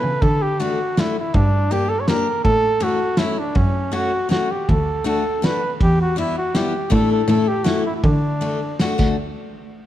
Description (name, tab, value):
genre	alpine folk, alpine dance band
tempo	161 BPM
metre	3/4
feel	straight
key	D major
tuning	A4 = 440 Hz
part	warm flugelhorn	melody	0.0-8.8 s	C#4 to C#5	-22 LUFS	equal	none
part	picked steel-string acoustic guitar	accompaniment	0.0-9.2 s	G3 to G4	-24 LUFS	left 4 dB	none
part	rich cello	bass	0.0-9.2 s	D2 to D3	-21 LUFS	equal	none
part	loose indie drum kit	drums	0.2-9.1 s	crash cymbal, kick drum, ride cymbal, snare drum	-23 LUFS	right 1 dB	none
room	light reverb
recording	dark, warm production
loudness	-17 LUFS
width	side -12 dB against mid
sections	0.0-9.2 A section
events	none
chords	0.2 D; 1.3 Gm; 2.4 A; 3.6 F#m; 4.7 D; 5.8 Em; 6.9 Asus4; 7.3 A; 8.0 D; 9.2 N.C.